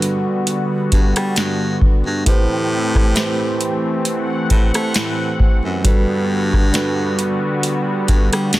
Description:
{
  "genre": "contemporary R&B",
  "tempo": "67 BPM",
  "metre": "4/4",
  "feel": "swing 54% on 16ths",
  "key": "G major",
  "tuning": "A4 = 439 Hz",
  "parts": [
    { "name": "mellow tine electric piano", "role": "accompaniment", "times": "0.0-8.6 s", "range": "G3 to C5", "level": "-21 LUFS", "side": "right 3 dB", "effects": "none" },
    { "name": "warm analog pad", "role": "sustained chords", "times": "0.0-8.6 s", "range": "D3 to F#5", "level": "-23 LUFS", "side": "left 2 dB", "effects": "lush chorus" },
    { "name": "clear baritone saxophone", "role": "bass", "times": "0.0-8.6 s", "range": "F#2 to A3", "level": "-22 LUFS", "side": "equal", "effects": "none" },
    { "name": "booming analog drum machine", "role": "drums", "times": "0.0-8.6 s", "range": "hi-hat, kick drum, rim click, snare drum", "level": "-16 LUFS", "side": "equal", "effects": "soft clipping on snare" }
  ],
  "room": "digital ambience",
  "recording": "dense, heavily limited modern master",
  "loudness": "-15 LUFS",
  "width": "side -16 dB against mid",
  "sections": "0.0-8.6 A section",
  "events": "none",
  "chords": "0.0 Gmaj7; 2.3 Am7; 5.8 Gmaj7"
}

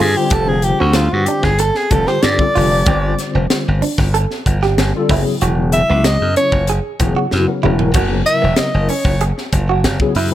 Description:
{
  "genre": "electric jazz fusion",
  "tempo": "94 BPM",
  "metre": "4/4",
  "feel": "straight",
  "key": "unclear",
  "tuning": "A4 = 440 Hz",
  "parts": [
    { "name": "clear soprano saxophone", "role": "melody", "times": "0.0-9.2 s", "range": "F4 to E5", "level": "-17 LUFS", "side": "equal", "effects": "tape echo" },
    { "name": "tine electric piano", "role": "accompaniment", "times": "0.0-10.3 s", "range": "C#3 to C5", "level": "-20 LUFS", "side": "left 3 dB", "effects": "medium tremolo, ensemble chorus" },
    { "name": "direct-recorded clean electric guitar", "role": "stabs", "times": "0.0-10.3 s", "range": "B3 to A4", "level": "-23 LUFS", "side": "right 6 dB", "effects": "lush chorus" },
    { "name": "slap bass", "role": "bass", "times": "0.0-10.3 s", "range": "E1 to G2", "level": "-16 LUFS", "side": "equal", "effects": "none" },
    { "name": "crisp fusion drum kit", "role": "drums", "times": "0.3-10.3 s", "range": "crash cymbal, hi-hat, kick drum, snare drum, toms", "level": "-20 LUFS", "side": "equal", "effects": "none" }
  ],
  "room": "light reverb, small room ambience",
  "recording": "none",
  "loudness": "-13 LUFS",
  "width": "side -12 dB against mid",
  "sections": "0.0-10.3 A section",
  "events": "soprano saxophone solo 0.0-10.3; drum fill 7.3-8.0",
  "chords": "0.0 G9sus4; 5.1 F#9sus4"
}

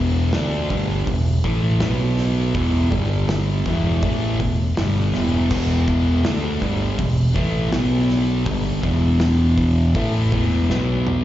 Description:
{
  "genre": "quiet-loud alternative rock",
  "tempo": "81 BPM",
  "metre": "4/4",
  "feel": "straight",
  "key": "unclear",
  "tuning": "A4 = 443 Hz",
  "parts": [
    { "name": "fuzz guitar", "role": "riff", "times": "0.0-11.2 s", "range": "E2 to D4", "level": "-20 LUFS", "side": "equal", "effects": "distortion, slapback echo" },
    { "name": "overdriven fingered electric bass", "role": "bass", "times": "0.0-11.2 s", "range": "E1 to D2", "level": "-22 LUFS", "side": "equal", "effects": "none" },
    { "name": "loose indie drum kit", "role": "drums", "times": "0.3-11.2 s", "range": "crash cymbal, hi-hat, kick drum, snare drum, toms", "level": "-26 LUFS", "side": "equal", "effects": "none" }
  ],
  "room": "light reverb",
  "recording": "live gig heard through the venue's PA, recital hall reverb, nothing above 7.6 kHz",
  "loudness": "-17 LUFS",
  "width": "side -13 dB against mid",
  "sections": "0.0-11.2 A section",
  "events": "drum fill 10.7-11.2",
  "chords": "0.0 E5; 1.8 B5; 2.6 E5; 2.9 G5; 3.7 E5; 7.7 B5; 8.5 E5; 10.7 B5"
}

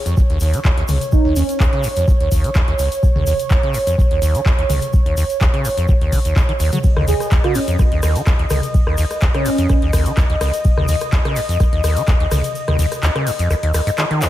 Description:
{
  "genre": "acid house",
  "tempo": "126 BPM",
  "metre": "4/4",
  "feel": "swing 53% on 16ths",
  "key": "unclear",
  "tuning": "A4 = 436 Hz",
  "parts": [
    { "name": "warm analog pad", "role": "sustained chords", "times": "0.0-14.3 s", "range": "Db5 to Eb5", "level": "-24 LUFS", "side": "right 1 dB", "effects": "lush chorus, sidechain pumping" },
    { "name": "liquid acid bass", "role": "riff", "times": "0.1-14.3 s", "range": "Db2 to Gb3", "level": "-19 LUFS", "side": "equal", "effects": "chorus, overdrive, sidechain pumping" },
    { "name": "booming analog drum machine", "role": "drums", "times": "0.1-14.3 s", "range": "handclaps, hi-hat, ride cymbal, rim click, toms", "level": "-24 LUFS", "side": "left 1 dB", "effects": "none" },
    { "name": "tube shaker", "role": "percussion", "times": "0.1-14.3 s", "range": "none", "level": "-33 LUFS", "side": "left 2 dB", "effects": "none" },
    { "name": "electronic kick drum", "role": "drums", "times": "0.2-12.2 s", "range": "none", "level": "-16 LUFS", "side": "equal", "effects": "none" },
    { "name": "airy dreamy lead", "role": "melody", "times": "1.1-1.6, 7.1-9.8 s", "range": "Db4 to Ab4", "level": "-22 LUFS", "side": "right 2 dB", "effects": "chorus, ping-pong delay" }
  ],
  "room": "digital ambience",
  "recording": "none",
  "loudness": "-14 LUFS",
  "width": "side -14 dB against mid",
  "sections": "0.0-14.3 A section",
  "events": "kick drops out 12.6-14.3",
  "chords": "none"
}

